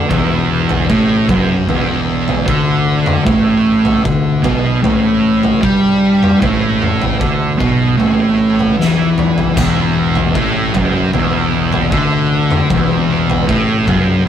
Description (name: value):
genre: stoner and doom metal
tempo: 76 BPM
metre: 4/4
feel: straight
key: E minor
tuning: A4 = 439 Hz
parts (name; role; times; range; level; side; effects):
- thick fuzz guitar; riff; 0.0-14.3 s; E2 to G3; -19 LUFS; left 5 dB; distortion
- thick fuzz guitar; riff; 0.0-14.3 s; E2 to G3; -14 LUFS; right 2 dB; distortion
- fuzz fingered electric bass; bass; 0.0-14.3 s; E1 to G2; -22 LUFS; equal; overdrive
- oversized low-tuned drum kit; drums; 0.1-14.1 s; kick drum, snare drum, splash cymbal, toms; -18 LUFS; equal; none
room: moderate studio ambience, RT60 0.5 s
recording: rough rehearsal-room recording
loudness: -11 LUFS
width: side -9 dB against mid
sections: 0.0-14.3 A section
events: drum fill 8.8-9.6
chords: 0.0 E9sus4; 3.3 A5; 9.6 E9sus4